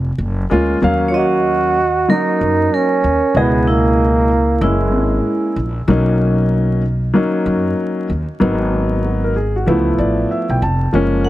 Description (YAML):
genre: hip hop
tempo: 95 BPM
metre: 4/4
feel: swing 63% on 16ths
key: unclear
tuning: A4 = 439 Hz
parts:
  - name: upright bass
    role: bass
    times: 0.0-11.3 s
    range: E#1 to F#2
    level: -18 LUFS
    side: equal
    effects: none
  - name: dark grand piano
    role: accompaniment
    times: 0.5-11.3 s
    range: B2 to A5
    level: -17 LUFS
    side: left 1 dB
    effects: none
  - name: mellow trombone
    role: melody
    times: 1.1-5.6, 11.3 s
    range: G#3 to A#4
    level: -16 LUFS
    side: right 2 dB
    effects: slapback echo
  - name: vibraphone with hard mallets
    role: second line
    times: 1.1-5.6, 11.2-11.3 s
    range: E4 to F#5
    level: -22 LUFS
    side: right 4 dB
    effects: none
room: light reverb, small room ambience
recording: vinyl crackle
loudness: -13 LUFS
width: side -15 dB against mid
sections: 0.8-11.3 A section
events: grand piano fill 9.7-10.9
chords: 0.0 F#; 0.8 D#m7; 3.4 C#m7; 4.6 F#9; 5.9 Bmaj7; 8.4 G#m9; 9.7 C#7alt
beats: 0.20 | 0.83 1.46 2.09 2.72 | 3.35 3.99 4.62 5.25 | 5.88 6.51 7.14 7.78 | 8.41 9.04 9.67 10.30 | 10.93